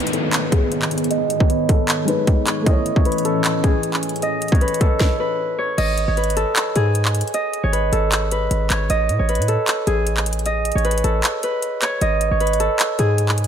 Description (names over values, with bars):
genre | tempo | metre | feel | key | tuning
hip hop, trap | 154 BPM | 4/4 | half-time | G# phrygian | A4 = 440 Hz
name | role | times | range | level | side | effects
Celtic harp | melody | 0.0-13.5 s | G#4 to C#6 | -21 LUFS | right 1 dB | low-pass filter
dark baby grand piano | accompaniment | 0.0-5.8 s | G#3 to C#5 | -28 LUFS | left 1 dB | low-pass filter
airy breathy pad | sustained chords | 0.0-5.0 s | G#2 to C#4 | -25 LUFS | left 2 dB | chorus, low-pass filter
trap drum kit | drums | 0.0-13.5 s | crash cymbal, handclaps, hi-hat, kick drum, snare drum | -20 LUFS | equal | none
downlifter | sound effects | 0.0-2.7 s | none | -28 LUFS | right 1 dB | none
hard-hitting 808-style bass | bass | 5.8-13.5 s | G#1 to A2 | -20 LUFS | equal | none
room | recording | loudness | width
light reverb | none | -17 LUFS | side -8 dB against mid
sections
0.0-5.8 A section; 5.8-13.5 B section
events
filter sweep 0.0-5.8; stop 5.0-5.8; kick muted 11.2-12.0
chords
0.0 G#m; 2.7 A; 5.8 G#m; 8.9 Amaj9#11; 12.0 G#madd11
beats
0.33 0.72 | 1.11 1.50 1.89 2.27 | 2.67 3.05 3.44 3.83 | 4.22 4.61 5.00 5.39 | 5.78 6.17 6.56 6.95 | 7.34 7.73 8.12 8.51 | 8.90 9.29 9.68 10.07 | 10.46 10.85 11.24 11.63 | 12.02 12.40 12.79 13.18